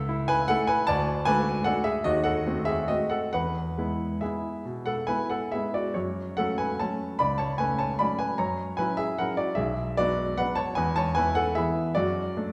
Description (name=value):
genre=classical, piano waltz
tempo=132-161 BPM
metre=3/4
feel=rubato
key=unclear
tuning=A4 = 439 Hz
part: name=clear baby grand piano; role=solo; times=0.0-12.5 s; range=B1 to B5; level=-27 LUFS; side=equal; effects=none
room=wet recital hall reverb, RT60 1.8 s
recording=heard from further back in the room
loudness=-27 LUFS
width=mono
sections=0.0-12.5 A section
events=none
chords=0.0 A/C#; 0.9 D; 2.0 D#dim7; 3.3 E; 6.0 F#m; 8.4 F#7; 9.6 Bm; 10.8 E; 12.0 D/F#